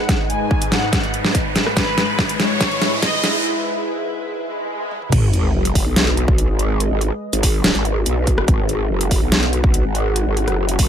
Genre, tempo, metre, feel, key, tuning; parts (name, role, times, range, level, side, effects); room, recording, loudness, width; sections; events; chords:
heavy wobble dubstep; 143 BPM; 4/4; half-time; G# minor; A4 = 440 Hz
bright studio violin section; melody; 0.0-3.4 s; B4 to G#5; -24 LUFS; left 2 dB; low-pass filter, ping-pong delay
lush unison pad; sustained chords; 0.0-10.9 s; G#2 to F#5; -26 LUFS; equal; chorus, phaser, sidechain pumping
riser, swell and sub drop; sound effects; 0.0-6.8 s; -24 LUFS; equal
dubstep drum kit; drums; 0.1-10.9 s; crash cymbal, hi-hat, rim click, snare drum, toms; -20 LUFS; equal; overdrive
electronic kick drum; drums; 0.1-10.9 s; -19 LUFS; equal; overdrive
growl bass; bass; 5.1-10.9 s; F#1 to B1; -19 LUFS; equal; chorus, overdrive
digital ambience; high-pass filter; -16 LUFS; side -9 dB against mid
0.0-5.1 A section; 5.1-10.9 B section
build-up 0.0-5.1; drum fill 0.0-3.4, 4.9; riser 0.0-3.4; filter sweep 0.0-5.1; break 3.4-5.1; swell 4.5-5.1; drop 5.1-10.9; impact 5.1-6.8
0.0 G#m; 1.8 E/G#; 5.1 G#m